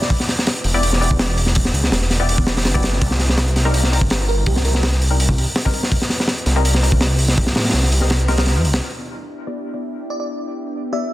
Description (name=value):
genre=drum and bass, jungle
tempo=165 BPM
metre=4/4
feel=straight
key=unclear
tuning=A4 = 440 Hz
part: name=bell-like FM electric piano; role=melody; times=0.0-0.1, 4.3-4.8, 10.1-11.1 s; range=G4 to E5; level=-29 LUFS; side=right 3 dB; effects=chorus, phaser, cassette tape, dub echo
part: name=filtered dub chord stab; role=stabs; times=0.0-11.0 s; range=G3 to D5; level=-26 LUFS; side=left 2 dB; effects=chorus, dub echo
part: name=crunchy breakbeat drum kit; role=drums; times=0.0-8.8 s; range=hi-hat, kick drum, snare drum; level=-18 LUFS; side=equal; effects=none
part: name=detuned saw bass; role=bass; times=0.6-8.8 s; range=E1 to A2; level=-18 LUFS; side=equal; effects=none
part: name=lush unison pad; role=sustained chords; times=8.8-11.1 s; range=B3 to G4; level=-27 LUFS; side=equal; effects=chorus
room=light reverb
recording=dense, heavily limited modern master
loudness=-15 LUFS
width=side -16 dB against mid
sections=0.0-8.8 A section; 8.8-11.1 B section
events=drop 0.0-8.8; filter sweep on synth stab 8.8-11.1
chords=0.0 Em7; 3.0 Cm7; 8.8 Em7